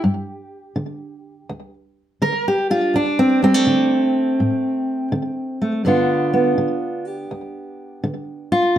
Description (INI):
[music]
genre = acoustic country blues, solo or duo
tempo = 82 BPM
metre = 4/4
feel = swing 66% on 8ths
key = G mixolydian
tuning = A4 = 440 Hz
[part]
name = fingerpicked steel-string acoustic guitar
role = solo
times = 0.0-8.8 s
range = D2 to Bb4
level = -17 LUFS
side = equal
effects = slapback echo
[sound]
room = light reverb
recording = none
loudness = -17 LUFS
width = side -11 dB against mid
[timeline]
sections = 0.0-5.9 A section; 5.9-8.8 B section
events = steel-string acoustic guitar solo 5.9-8.8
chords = 0.0 G5; 2.9 D5; 5.9 G7